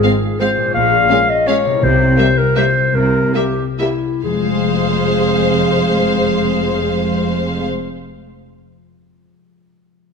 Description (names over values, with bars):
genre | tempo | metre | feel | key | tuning
classical | 128-179 BPM | 3/4 | rubato | F minor | A4 = 440 Hz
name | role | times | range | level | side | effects
clear symphonic violin section | melody | 0.0-7.7 s | E5 to F5 | -25 LUFS | left 2 dB | none
mellow clarinet | second line | 0.0-7.6 s | E4 to F5 | -17 LUFS | left 1 dB | none
warm symphonic violin section | second line | 0.0-7.7 s | Bb3 to C5 | -23 LUFS | left 3 dB | none
rich symphonic viola section | accompaniment | 0.0-7.7 s | G3 to Ab3 | -22 LUFS | equal | none
concert harp | arpeggios | 0.0-8.1 s | Ab2 to F5 | -22 LUFS | left 8 dB | none
rich symphonic cello section | bass | 0.7-7.7 s | F2 to C3 | -22 LUFS | right 3 dB | none
dark studio double bass section | bass | 0.8-7.7 s | F1 to C2 | -23 LUFS | right 4 dB | none
timpani | percussion | 1.8-7.6 s | F2 to C3 | -24 LUFS | equal | none
room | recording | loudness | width
moderate scoring stage reverb, RT60 1.9 s | none | -13 LUFS | side -5 dB against mid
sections
0.0-4.2 A section; 4.2-6.9 B section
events
slowing down 1.3-4.2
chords
0.0 Fm/Ab; 0.7 Bbm7; 1.8 C7; 4.2 Fm